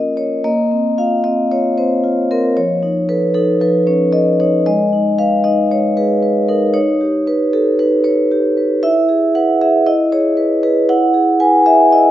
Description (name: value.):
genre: classical, contemporary piece for solo vibraphone.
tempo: 115 BPM.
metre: 4/4.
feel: rubato.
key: Bb minor.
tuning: A4 = 439 Hz.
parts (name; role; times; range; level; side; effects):
vibraphone with soft mallets; solo; 0.0-12.1 s; F3 to G#5; -12 LUFS; equal; none.
room: wet recital hall reverb, RT60 1.7 s.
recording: nothing above 7.8 kHz.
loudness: -12 LUFS.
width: side -12 dB against mid.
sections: 0.5-12.1 A section.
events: none.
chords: 0.5 Bbsus2; 2.6 Faug7; 4.7 Abm; 6.8 Ebaug7; 8.8 E.